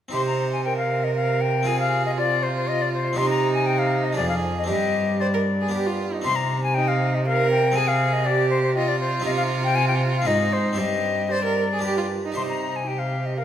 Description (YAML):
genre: classical, baroque-style sonata movement with continuo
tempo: 118 BPM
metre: 3/4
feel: rubato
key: C minor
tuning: A4 = 440 Hz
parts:
  - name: silver concert flute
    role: melody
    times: 0.1-13.4 s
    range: C5 to C6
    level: -24 LUFS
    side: left 5 dB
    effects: none
  - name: clear violin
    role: second line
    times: 0.1-13.4 s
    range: Eb4 to C5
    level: -26 LUFS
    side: right 4 dB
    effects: none
  - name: harpsichord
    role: accompaniment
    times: 0.1-13.4 s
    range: F2 to C5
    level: -29 LUFS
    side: right 1 dB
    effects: none
  - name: clear cello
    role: bass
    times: 0.1-13.4 s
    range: F2 to C3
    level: -25 LUFS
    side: right 1 dB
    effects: none
room: wet recital hall reverb, RT60 1.7 s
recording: none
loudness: -20 LUFS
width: side -10 dB against mid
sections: 0.1-12.4 A section; 12.4-13.4 A section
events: none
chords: 0.1 Cm; 1.7 Fm/C; 3.2 Cm; 4.2 Ddim/F; 4.7 Gsus4; 5.7 G; 6.3 Cm; 7.8 Fm/C; 9.3 Cm; 10.3 Ab; 10.8 Gsus4; 11.8 G; 12.4 Cm